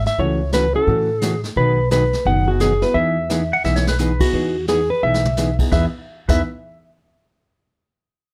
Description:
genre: country, western swing.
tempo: 173 BPM.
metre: 4/4.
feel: swing 63% on 8ths.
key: E major.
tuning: A4 = 442 Hz.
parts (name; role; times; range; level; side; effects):
clean lap steel guitar; melody; 0.0-6.4 s; F#4 to F#5; -22 LUFS; equal; plate reverb.
upright bass; bass; 0.0-6.4 s; F#1 to A2; -24 LUFS; equal; none.
vintage brush drum kit; drums; 0.1-6.3 s; brushed snare drum, crash cymbal, hi-hat, kick drum, snare drum, toms; -26 LUFS; equal; none.
dark upright piano; accompaniment; 0.2-6.4 s; B3 to B4; -30 LUFS; equal; none.
hollow-body jazz guitar; accompaniment; 0.2-6.4 s; B2 to G#4; -26 LUFS; equal; none.
pedal steel guitar; second line; 3.5-6.4 s; B4 to F#5; -26 LUFS; equal; none.
room: moderate studio reverb, RT60 0.5 s.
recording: none.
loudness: -18 LUFS.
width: mono.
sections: 0.0-4.3 A section; 4.3-5.7 B section; 5.7-7.1 C section.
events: drum fill 3.6-4.0, 5.0-5.4.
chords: 0.2 A6/C#; 1.6 B6; 3.0 Emaj7.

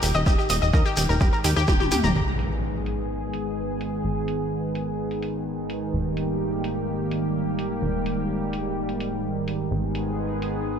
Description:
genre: melodic techno.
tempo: 127 BPM.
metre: 4/4.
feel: straight.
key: G# harmonic minor.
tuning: A4 = 440 Hz.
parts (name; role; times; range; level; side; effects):
analog pluck; arpeggios; 0.0-2.1 s; G4 to A#5; -25 LUFS; left 1 dB; chorus, sidechain pumping, ping-pong delay.
plucky analog bass; bass; 0.0-10.8 s; D#1 to D#2; -29 LUFS; equal; tube saturation, sidechain pumping.
analog drone; drone; 0.0-10.8 s; G#2 to D#3; -31 LUFS; equal; chorus, sidechain pumping.
deep house drum kit; drums; 0.0-10.5 s; hi-hat, toms; -30 LUFS; left 1 dB; low-pass filter on hats, low-pass filter on toms, low-pass filter on room.
shekere; percussion; 0.0-2.1 s; none; -32 LUFS; left 2 dB; none.
electronic kick drum; drums; 0.3-1.8 s; none; -21 LUFS; equal; none.
lush unison pad; sustained chords; 2.2-10.8 s; D#3 to G#4; -28 LUFS; right 1 dB; chorus, sidechain pumping.
impact; sound effects; 2.2-4.0 s; none; -31 LUFS; equal; none.
room: moderate lush hall reverb, RT60 1.9 s.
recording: bright 1980s-style digital production.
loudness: -23 LUFS.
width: side -7 dB against mid.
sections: 0.0-2.2 A section; 2.2-10.8 B section.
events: drum fill 1.7-2.2; impact 2.2-4.0.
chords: 0.0 D#; 2.2 G#m; 5.9 D#; 9.7 G#m.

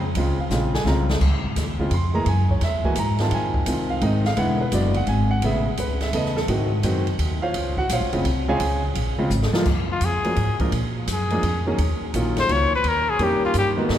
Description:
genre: jazz, small-group swing and bop.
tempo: 170 BPM.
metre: 3/4.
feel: swing 65% on 8ths.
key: Db major.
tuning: A4 = 442 Hz.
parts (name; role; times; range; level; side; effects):
upright bass; bass; 0.0-14.0 s; E1 to A#2; -23 LUFS; equal; none.
open jazz drum kit; drums; 0.1-14.0 s; crash cymbal, hi-hat, kick drum, ride cymbal, snare drum; -28 LUFS; equal; none.
warm baby grand piano; accompaniment; 0.2-14.0 s; Db3 to C6; -24 LUFS; equal; none.
warm trumpet; melody; 9.9-13.7 s; E#4 to C#5; -23 LUFS; left 3 dB; none.
room: wet cathedral reverb, RT60 5.2 s.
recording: recorded in a church or concert hall.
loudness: -19 LUFS.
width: side -11 dB against mid.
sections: 0.0-1.2 A section; 1.2-9.7 A section; 9.7-14.0 A section.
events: drum fill 0.5-1.2, 9.3-9.7; trumpet solo 9.7-14.0.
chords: 0.0 Dbmaj7; 2.3 Gb9; 3.3 Fm7; 4.4 E7; 5.4 Amaj9; 6.5 Ab7; 7.5 Dbmaj7; 9.7 F#maj9; 10.7 A#7(no3); 11.8 D#m9; 12.8 D#7.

